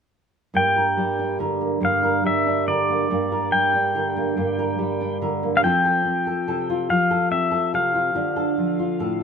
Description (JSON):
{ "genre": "acoustic folk-pop ballad", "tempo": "71 BPM", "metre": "3/4", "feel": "straight", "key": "G dorian", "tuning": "A4 = 443 Hz", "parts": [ { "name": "nylon-string guitar", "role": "accompaniment", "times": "0.5-9.2 s", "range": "G2 to Bb4", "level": "-22 LUFS", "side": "right 1 dB", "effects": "none" }, { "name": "pedal steel guitar", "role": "melody", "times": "0.6-9.2 s", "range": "D5 to G5", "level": "-21 LUFS", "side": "left 1 dB", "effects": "none" } ], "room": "moderate studio reverb, RT60 0.5 s", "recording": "minimal, uncompressed stereo recording", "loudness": "-19 LUFS", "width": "side -6 dB against mid", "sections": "0.6-9.2 A section", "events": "none", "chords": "0.6 Gm; 5.6 F; 8.1 Dm", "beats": "| 0.55 1.40 2.25 | 3.10 3.95 4.79 | 5.63 6.46 7.30 | 8.14 8.99" }